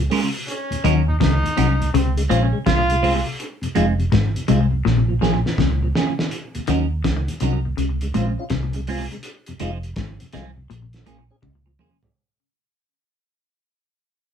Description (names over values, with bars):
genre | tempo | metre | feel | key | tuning
roots reggae | 82 BPM | 4/4 | swing 64% on 16ths | Eb dorian | A4 = 437 Hz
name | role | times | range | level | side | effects
mellow tonewheel organ | accompaniment | 0.0-12.1 s | Eb2 to Ab4 | -27 LUFS | left 2 dB | overdrive, slow rotary speaker
vintage muted fingered electric bass | bass | 0.0-11.8 s | F1 to Eb2 | -22 LUFS | right 1 dB | tube saturation
clean electric guitar | accompaniment | 0.1-12.0 s | F3 to Bb4 | -23 LUFS | right 7 dB | phaser
cloth-damped thuddy drum kit | drums | 0.1-12.1 s | hi-hat, kick drum, snare drum, toms | -26 LUFS | right 1 dB | none
bright trombone | second line | 0.5-3.2 s | C4 to F4 | -24 LUFS | right 1 dB | none
semi-hollow electric guitar | riff | 0.8-11.6 s | F2 to Eb3 | -23 LUFS | left 7 dB | tremolo, analog delay
room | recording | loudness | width
moderate studio ambience, RT60 0.4 s | band playing live in one room | -18 LUFS | side -8 dB against mid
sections
0.0-6.3 A section; 6.3-12.2 B section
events
drum fill 4.8-6.3, 11.4-12.2; fade-out 6.3-12.2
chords
0.5 Ebm7; 1.9 Dbmaj7; 3.4 Fm7; 4.8 Bbm7; 6.3 Ebm7; 7.8 Dbmaj7; 9.2 Fm7; 10.7 Bbm7